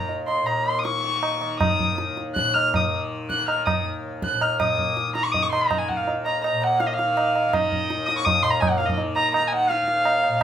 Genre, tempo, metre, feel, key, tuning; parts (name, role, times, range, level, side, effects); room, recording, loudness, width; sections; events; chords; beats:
indian classical, Hindustani; 163 BPM; 4/4; straight; Eb raga kafi; A4 = 440 Hz
dark violin; melody; 0.0-10.4 s; Eb5 to Gb6; -22 LUFS; equal
tanpura; drone; 0.0-10.4 s; Eb2 to Eb3; -30 LUFS; left 1 dB
tabla; percussion; 0.1-10.4 s; -25 LUFS; right 2 dB
moderate large studio reverb, RT60 0.8 s; band playing live in one room; -20 LUFS; side -9 dB against mid
0.0-4.6 A section; 4.6-10.4 B section
speeding up 0.0-10.4
| 0.10 0.48 0.85 1.23 | 1.61 1.99 2.36 2.73 | 3.11 3.48 3.85 4.22 | 4.59 4.96 5.33 5.70 | 6.07 6.44 6.80 7.17 | 7.53 7.90 8.26 8.62 | 8.98 9.34 9.70 10.06 | 10.42